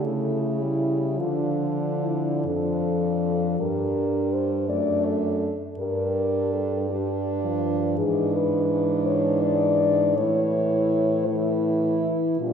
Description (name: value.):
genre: classical, lyrical piece for horn quartet.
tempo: 46-56 BPM (dotted quarters).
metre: 6/8.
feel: rubato.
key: D minor.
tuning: A4 = 438 Hz.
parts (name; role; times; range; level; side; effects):
dark French horn; melody; 0.0-12.5 s; E4 to D5; -26 LUFS; left 4 dB; none.
warm French horn; second line; 0.0-12.5 s; D4 to E4; -28 LUFS; right 6 dB; none.
mellow French horn; accompaniment; 0.0-12.5 s; E3 to A3; -28 LUFS; left 2 dB; none.
clear French horn; bass; 0.0-12.5 s; F2 to D3; -28 LUFS; right 2 dB; none.
room: wet scoring stage reverb, RT60 1.8 s.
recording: heard from further back in the room.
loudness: -21 LUFS.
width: side -7 dB against mid.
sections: 0.0-12.5 A section.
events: none.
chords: 0.0 A/C#; 1.2 Dm; 3.6 Gm; 4.7 D/F#; 5.8 Gm; 8.0 E7/G#; 10.2 A.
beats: 0.03 | 1.19 2.46 | 3.60 4.69 | 5.79 6.89 | 7.98 9.06 | 10.17 11.27 | 12.39.